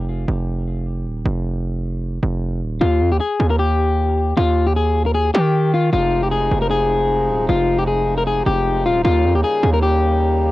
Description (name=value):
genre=hip hop, trap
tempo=154 BPM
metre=4/4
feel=half-time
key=unclear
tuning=A4 = 440 Hz
part: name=distorted 808-style bass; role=bass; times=0.0-10.5 s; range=Eb1 to Eb3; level=-19 LUFS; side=right 1 dB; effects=distortion
part: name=electric guitar at the edge of break-up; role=melody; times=2.8-10.5 s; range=F4 to Bb4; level=-18 LUFS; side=left 4 dB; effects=low-pass filter, cassette tape
part: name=pedal harmonium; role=sustained chords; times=5.9-10.5 s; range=C3 to Eb4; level=-25 LUFS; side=right 1 dB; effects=none
room=little or no reverb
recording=home recording on cassette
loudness=-16 LUFS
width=side -16 dB against mid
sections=0.0-5.9 A section; 5.9-10.5 B section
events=break 0.0-2.8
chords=0.0 Ebsus2; 5.9 Fm7; 9.0 Eb7